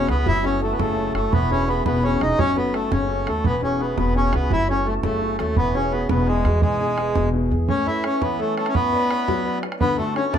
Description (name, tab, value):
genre	celtic folk, Celtic jig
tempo	113 BPM (dotted quarters)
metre	6/8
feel	straight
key	E major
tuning	A4 = 439 Hz
part	accordion	melody	0.0-10.4 s	G#3 to E4	-23 LUFS	equal	none
part	hammered dulcimer	second line	0.0-10.4 s	G#3 to A4	-29 LUFS	right 2 dB	none
part	wooden flute	second line	0.0-10.4 s	C#5 to B5	-30 LUFS	left 3 dB	none
part	clear baby grand piano	accompaniment	0.0-10.4 s	B2 to D5	-27 LUFS	left 3 dB	none
part	upright bass	bass	0.0-7.7 s	E1 to E2	-24 LUFS	equal	none
part	bodhran	percussion	0.1-10.4 s	none	-25 LUFS	right 3 dB	none
room	wet small room reverb, RT60 0.5 s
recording	minimal, uncompressed stereo recording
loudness	-19 LUFS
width	side -9 dB against mid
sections	0.0-7.7 A section; 7.7-10.4 B section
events	none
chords	0.3 F#m; 1.3 Eadd9; 2.4 F#m; 3.4 Eadd9; 4.5 F#m; 5.6 Eadd9; 6.6 E; 7.7 Aadd9; 8.7 Bmadd9; 9.8 D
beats	| 0.26 0.79 | 1.32 1.85 | 2.38 2.91 | 3.44 3.98 | 4.50 5.04 | 5.57 6.10 | 6.63 7.16 | 7.69 8.22 | 8.75 9.28 | 9.81 10.34